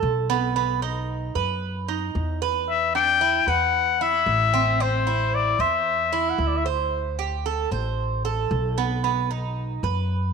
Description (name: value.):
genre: latin, Cuban son and guajira.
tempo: 113 BPM.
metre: 4/4.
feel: straight.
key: E minor.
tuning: A4 = 440 Hz.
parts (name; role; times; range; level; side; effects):
Cuban tres; arpeggios; 0.0-10.3 s; B3 to C5; -26 LUFS; right 10 dB; none.
upright bass; bass; 0.0-10.3 s; A1 to F#2; -27 LUFS; equal; none.
breathy trumpet; melody; 2.7-6.7 s; C5 to G5; -21 LUFS; left 9 dB; none.
room: moderate plate reverb, RT60 2.3 s.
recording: 1960s-style stereo with parts hard left and right.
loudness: -21 LUFS.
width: side -5 dB against mid.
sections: 0.0-10.3 A section.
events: none.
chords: 0.0 N.C.; 0.6 B; 2.7 Em9; 4.8 Am; 6.9 D7sus4; 9.0 B.